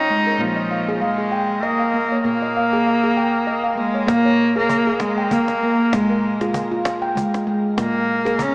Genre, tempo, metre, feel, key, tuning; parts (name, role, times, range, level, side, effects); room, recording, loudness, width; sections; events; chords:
world meditative, meditative tuned percussion; 98 BPM; 3/4; swing 55% on 16ths; Bb minor pentatonic; A4 = 440 Hz
rich cello; melody; 0.0-8.5 s; F3 to Eb4; -19 LUFS; equal; shimmer reverb, diffuse ambient delay
handpan; arpeggios; 0.0-8.5 s; Bb2 to G5; -20 LUFS; equal; shimmer reverb, diffuse ambient delay
cajon; percussion; 4.1-8.5 s; -27 LUFS; equal
wet echo chamber reverb, RT60 1.4 s, small room ambience; small speaker sound; -16 LUFS; side -32 dB against mid
0.0-4.1 A section; 4.1-8.5 B section
0.4 Bb5; 4.1 Bbm; 5.9 Fmadd11/Bb; 7.8 N.C.